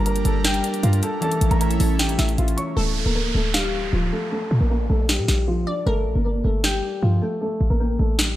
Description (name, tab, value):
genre	hip hop, trap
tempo	155 BPM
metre	4/4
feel	half-time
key	D harmonic minor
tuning	A4 = 440 Hz
part	dark concert grand piano	melody	0.0-8.4 s	F3 to C#6	-26 LUFS	left 1 dB	low-pass filter, diffuse ambient delay
part	glassy wavetable pluck	second line	0.0-7.4 s	A4 to G5	-33 LUFS	left 1 dB	chorus, diffuse ambient delay
part	Celtic harp	accompaniment	0.0-4.1 s	E3 to Bb4	-30 LUFS	left 1 dB	none
part	airy breathy pad	sustained chords	0.0-2.8 s	G3 to Bb4	-28 LUFS	right 1 dB	chorus
part	short 808-style bass	bass	0.0-8.4 s	C#1 to Bb2	-21 LUFS	equal	none
part	trap drum kit	drums	0.1-8.3 s	hi-hat, snare drum	-24 LUFS	equal	none
part	downlifter	sound effects	2.8-5.9 s	none	-31 LUFS	right 2 dB	none
room	light reverb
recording	none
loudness	-19 LUFS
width	side -14 dB against mid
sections	0.0-2.8 A section; 2.8-8.4 B section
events	hi-hats muted 2.8-8.4; filter sweep on grand piano 2.8-8.4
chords	0.0 Gm; 1.2 A; 2.8 Dm; 4.3 Bb; 5.9 Gm; 7.4 N.C.